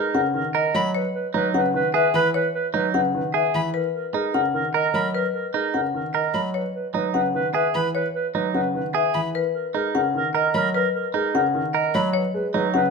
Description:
classical, minimalist pattern music; 300 BPM (eighths); 7/8; straight; A4 = 439 Hz
mellow clarinet; second line; 0.0-12.9 s; A#4 to B4; -26 LUFS; right 4 dB
dark grand piano; accompaniment; 0.0-12.9 s; C#3 to G#3; -26 LUFS; equal
clean electric guitar; arpeggios; 0.0-12.8 s; D#4 to A#4; -26 LUFS; right 10 dB
marimba with medium hard mallets; melody; 0.1-12.9 s; B4 to F#5; -25 LUFS; left 7 dB
dark violin; arpeggios; 0.7-12.1 s; B5; -29 LUFS; left 1 dB
moderate large studio reverb, RT60 1.1 s; -20 LUFS; side -4 dB against mid
0.0-12.9 A section
0.0 Bmaj9; 0.9 C#m9; 3.7 Bmaj9 (rootless); 6.5 C#m9; 9.3 Bmaj9 (rootless); 12.1 C#7sus2
0.14 0.34 0.54 0.74 | 0.94 1.14 1.34 1.54 1.74 1.94 2.14 | 2.34 2.54 2.74 2.94 3.14 3.34 3.54 | 3.74 3.94 4.14 4.34 4.54 4.74 4.94 | 5.14 5.34 5.54 5.74 5.94 6.14 6.34 | 6.54 6.74 6.94 7.14 7.34 7.54 7.74 | 7.94 8.14 8.34 8.54 8.74 8.94 9.14 | 9.34 9.54 9.74 9.94 10.14 10.34 10.54 | 10.74 10.94 11.14 11.34 11.54 11.74 11.94 | 12.14 12.34 12.54 12.74

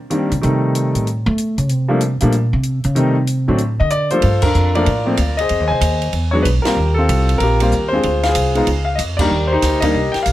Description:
jazz piano trio; 189 BPM; 4/4; swing 64% on 8ths; G minor; A4 = 440 Hz
clear concert grand piano; melody; 0.1-10.3 s; D3 to Ab5; -17 LUFS; left 1 dB
compact cocktail drum kit; drums; 0.1-10.3 s; crash cymbal, hi-hat, kick drum, ride cymbal, snare drum; -24 LUFS; right 3 dB
upright bass; bass; 0.3-10.3 s; Bb1 to A3; -17 LUFS; right 1 dB
little or no reverb; -14 LUFS; side -14 dB against mid
0.0-4.2 A section; 4.2-10.3 B section
upright bass solo 0.0-4.2; band accent 4.4, 6.6, 9.2
0.4 Am7b5; 1.1 A; 1.7 N.C.; 3.0 Am7b5; 3.6 D5; 4.2 Gm9; 5.5 Fm7; 6.1 E; 6.8 Eb69; 8.0 Dm7b5; 8.7 C#add9; 9.3 Cm9
0.11 | 0.43 0.74 1.06 1.38 | 1.70 2.01 2.33 2.64 | 2.96 3.28 3.59 3.91 | 4.23 4.54 4.86 5.18 | 5.50 5.82 6.13 6.45 | 6.77 7.09 7.40 7.72 | 8.04 8.36 8.67 8.99 | 9.31 9.63 9.95 10.26

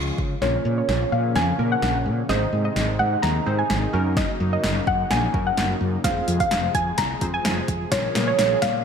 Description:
dance-pop; 128 BPM; 4/4; straight; A4 = 441 Hz
glassy digital keys; accompaniment; 0.0-8.5 s; F3 to Db5; -31 LUFS; right 1 dB; chorus, sidechain pumping, slapback echo
soft supersaw; sustained chords; 0.0-8.8 s; C3 to Ab4; -30 LUFS; left 1 dB; sidechain pumping
woody fretless electric bass; bass; 0.0-8.8 s; F1 to Db3; -25 LUFS; equal; lush chorus, sidechain pumping
deep house drum kit; drums; 0.2-8.7 s; hi-hat, kick drum, snare drum; -26 LUFS; equal; overdrive
soft round pluck; melody; 0.4-8.8 s; Db5 to Bb5; -24 LUFS; right 1 dB; chorus, phaser, ping-pong delay, slapback echo
moderate lush hall reverb, RT60 1.5 s, digital ambience; big arena sound, high-pass filter; -20 LUFS; side -7 dB against mid
0.4-8.8 A section
build-up 0.4-8.8; drum fill 0.4-8.8; filter sweep 0.4-8.8
0.4 Bbm; 2.3 Ab; 3.9 Ebm7/Gb; 6.0 Fm; 7.9 Bbm
| 0.42 0.89 1.36 1.82 | 2.29 2.76 3.23 3.70 | 4.17 4.64 5.11 5.58 | 6.04 6.51 6.98 7.45 | 7.92 8.39

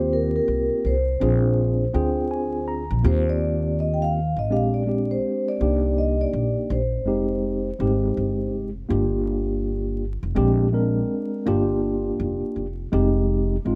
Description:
hip hop; 82 BPM; 4/4; swing 63% on 16ths; Eb major; A4 = 440 Hz
vibraphone with soft mallets; melody; 0.0-8.5 s; Bb4 to G5; -29 LUFS; equal; slapback echo
mellow tine electric piano; accompaniment; 0.0-13.8 s; G3 to Bb5; -26 LUFS; equal
upright bass; bass; 0.0-13.8 s; F1 to Eb2; -26 LUFS; equal
small room ambience; rough home demo mix, vinyl crackle; -23 LUFS; mono
0.0-13.8 A section
tine electric piano fill 1.6-3.0
0.0 Eb6; 1.2 Bb7; 3.0 Eb6; 4.5 Bb13; 5.6 Cm7; 7.1 Fm7; 8.9 Gm7; 10.4 Bb13; 11.5 Gm7; 12.9 Fm7
| 0.12 0.85 1.58 2.31 | 3.04 3.77 4.51 5.24 | 5.97 6.70 7.43 8.16 | 8.90 9.63 10.36 11.09 | 11.82 12.56 13.29

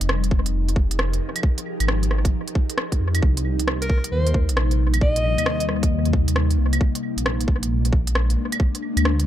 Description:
future garage; 134 BPM; 4/4; swing 64% on 16ths; C minor; A4 = 440 Hz
ethereal airy pad; sustained chords; 0.0-9.3 s; C3 to Bb4; -27 LUFS; left 2 dB; ensemble chorus, built-in reverb, phaser, sidechain pumping
dark detuned saw bass; bass; 0.0-9.3 s; F1 to F2; -21 LUFS; equal; tube saturation, sidechain pumping
organic electronic drum kit; drums; 0.0-9.3 s; claves, hi-hat, rim click; -26 LUFS; right 1 dB; overdrive, analog delay
electronic kick drum; drums; 0.3-8.7 s; -20 LUFS; equal; overdrive
breathy alto saxophone; melody; 3.8-5.7 s; Bb4 to Eb5; -26 LUFS; left 1 dB; analog delay
light reverb; echo-heavy mix; -19 LUFS; side -12 dB against mid
0.0-9.3 A section
0.0 Fm11; 3.2 Cm7; 6.8 Bb7
0.09 0.54 0.99 | 1.44 1.88 2.33 2.78 | 3.23 3.67 4.12 4.57 | 5.02 5.47 5.91 6.36 | 6.81 7.26 7.71 8.15 | 8.60 9.05

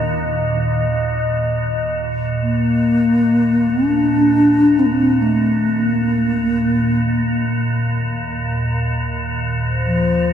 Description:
world meditative, free-time meditation music; free time; A4 = 439 Hz
mellow hollow bass flute; melody; 0.0-10.3 s; Eb3 to D4; -16 LUFS; left 1 dB; diffuse ambient delay
icy glass pad; drone; 0.0-10.3 s; Eb2 to Bb2; -20 LUFS; right 1 dB; chorus, built-in reverb
glass harmonica; texture; 0.0-1.9, 9.6-10.3 s; C5 to Eb5; -24 LUFS; equal
wet cathedral reverb, RT60 5.0 s; dark, warm production; -15 LUFS; side -9 dB against mid
0.0-1.5 A section; 1.5-10.3 A section
free time

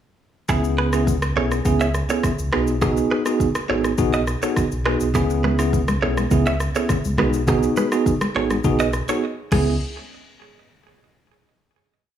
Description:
afrobeats; 103 BPM; 4/4; straight; C# minor; A4 = 440 Hz
bell-like tine electric piano; accompaniment; 0.5-9.7 s; B3 to G#4; -21 LUFS; right 1 dB; slow stereo tremolo
direct-recorded clean electric guitar; riff; 0.5-9.7 s; D#4 to E5; -26 LUFS; right 4 dB; digital delay
sub bass with octave; bass; 0.5-9.8 s; G#1 to C#2; -24 LUFS; equal
afro-pop drum kit; drums; 0.5-9.7 s; crash cymbal, kick drum, rim click, shaker; -25 LUFS; equal
congas; percussion; 5.1-9.8 s; -27 LUFS; left 1 dB
light reverb, digital ambience; studio reverb; -18 LUFS; side -10 dB against mid
0.5-9.8 verse; 9.8-12.1 final hit
drums muted 9.2-9.8
0.5 C#m7; 2.5 G#m7; 5.1 C#m7; 7.2 G#m7/B; 9.5 C#m7; 9.8 N.C.
| 0.49 1.07 1.65 2.24 | 2.82 3.40 3.98 4.57 | 5.15 5.73 6.31 6.90 | 7.48 8.06 8.64 9.23

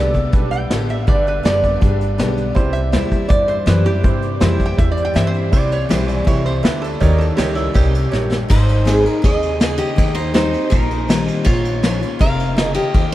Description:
honky-tonk and classic country; 162 BPM; 4/4; straight; Ab major from 8.5 s; A4 = 440 Hz
lap resonator guitar; second line; 0.0-8.4 s; E4 to G5; -23 LUFS; right 1 dB
dark grand piano; accompaniment; 0.0-8.4 s; D4 to E5; -27 LUFS; right 5 dB
picked steel-string acoustic guitar; accompaniment; 0.0-13.1 s; G2 to Ab4; -22 LUFS; left 3 dB
upright bass; bass; 0.0-13.1 s; F1 to G2; -20 LUFS; equal
vintage brush drum kit; drums; 0.1-13.0 s; crash cymbal, hi-hat, kick drum, ride cymbal, snare drum; -18 LUFS; equal
picked steel-string acoustic guitar; melody; 8.5-13.1 s; Eb4 to F5; -20 LUFS; equal
moderate huge ambient reverb, RT60 8.5 s; in a vast, echoing space; -14 LUFS; side -15 dB against mid
0.0-5.5 A section; 5.5-8.5 B section; 8.5-13.1 C section
resonator guitar played with a steel bar solo 0.0-5.5; drum fill 8.1-8.5
0.0 G; 2.6 C; 7.0 Eb7; 8.5 Ab; 10.0 Eb6; 11.5 Bbm
0.33 0.70 | 1.07 1.44 1.81 2.19 | 2.56 2.93 3.30 3.67 | 4.04 4.41 4.78 5.15 | 5.53 5.90 6.27 6.64 | 7.01 7.38 7.75 8.12 | 8.49 8.86 9.23 9.61 | 9.98 10.35 10.72 11.09 | 11.46 11.83 12.20 12.57 | 12.94

